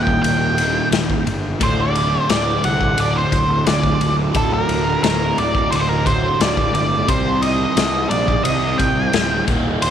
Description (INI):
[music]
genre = psychedelic rock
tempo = 88 BPM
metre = 4/4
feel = straight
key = D phrygian dominant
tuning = A4 = 440 Hz
[part]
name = octave-fuzz lead guitar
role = melody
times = 0.0-9.9 s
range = A4 to G5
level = -20 LUFS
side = right 1 dB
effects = distortion, tape echo
[part]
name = phased string machine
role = sustained chords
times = 0.0-9.9 s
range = D3 to A5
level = -29 LUFS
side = right 10 dB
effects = ensemble chorus, phaser
[part]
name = fuzz guitar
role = riff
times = 0.0-9.9 s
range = D2 to C4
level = -22 LUFS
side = equal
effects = distortion, phaser
[part]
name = fuzz picked electric bass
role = bass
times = 0.0-9.9 s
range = D1 to C2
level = -23 LUFS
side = equal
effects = overdrive
[part]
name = raw garage drum kit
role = drums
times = 0.1-9.9 s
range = kick drum, ride cymbal, snare drum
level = -21 LUFS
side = left 3 dB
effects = none
[sound]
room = light reverb, small room ambience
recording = 1960s-style stereo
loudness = -15 LUFS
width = side -9 dB against mid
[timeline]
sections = 0.0-9.9 A section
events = none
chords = 0.0 Eb; 1.6 D; 7.1 Cm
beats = 0.24 0.93 | 1.61 2.29 2.98 3.66 | 4.35 5.03 5.71 6.40 | 7.08 7.77 8.45 9.13 | 9.82